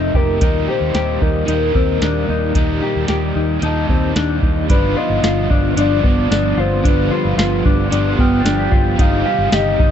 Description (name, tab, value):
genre	dream pop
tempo	112 BPM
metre	4/4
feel	straight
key	unclear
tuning	A4 = 440 Hz
part	soft octave-layered synth lead	melody	0.0-9.9 s	Bb4 to G5	-22 LUFS	left 2 dB	chorus, phaser, tape echo
part	overdriven electric guitar	accompaniment	0.0-9.9 s	G2 to G4	-24 LUFS	right 3 dB	tremolo, wide subtle chorus
part	string machine, cellos	sustained chords	0.0-9.9 s	Bb2 to G4	-24 LUFS	equal	ensemble chorus
part	mellow electric guitar	arpeggios	0.0-9.9 s	B3 to G4	-20 LUFS	left 3 dB	analog chorus, tape echo
part	vintage muted fingered electric bass	bass	0.0-9.9 s	F1 to Eb2	-20 LUFS	equal	none
part	soft vintage rhythm box	drums	0.1-9.9 s	hi-hat, kick drum, snare drum, tambourine	-17 LUFS	equal	none
part	large celesta	texture	3.6-9.1 s	A5 to B6	-33 LUFS	left 2 dB	tape echo
room	light reverb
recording	dark, warm production, nothing above 7.9 kHz, faint mains hum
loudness	-14 LUFS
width	side -9 dB against mid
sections	0.0-4.7 A section; 4.7-9.9 B section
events	none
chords	0.4 Eb; 4.7 G7; 9.0 Cm/G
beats	| 0.41 0.95 1.48 2.02 | 2.56 3.09 3.63 4.16 | 4.70 5.23 5.77 6.30 | 6.84 7.38 7.91 8.45 | 8.98 9.52